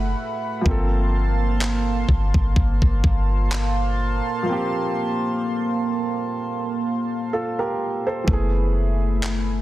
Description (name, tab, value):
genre	contemporary R&B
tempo	63 BPM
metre	4/4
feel	swing 54% on 16ths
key	unclear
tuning	A4 = 443 Hz
part	warm baby grand piano	accompaniment	0.0-9.6 s	E3 to C5	-27 LUFS	right 1 dB	none
part	chorused pulse-width pad	sustained chords	0.0-9.6 s	A3 to C6	-26 LUFS	right 1 dB	sidechain pumping
part	clean 808-style bass	bass	0.0-9.6 s	F#1 to G1	-21 LUFS	equal	none
part	dusty soul sampler-style drum kit	drums	0.7-9.5 s	handclaps, kick drum	-22 LUFS	equal	none
room	little or no reverb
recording	dense, heavily limited modern master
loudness	-20 LUFS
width	side -15 dB against mid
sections	0.0-8.3 A section; 8.3-9.6 B section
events	break 4.5-8.3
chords	0.0 F#m11; 0.7 Gm11; 8.3 F#m11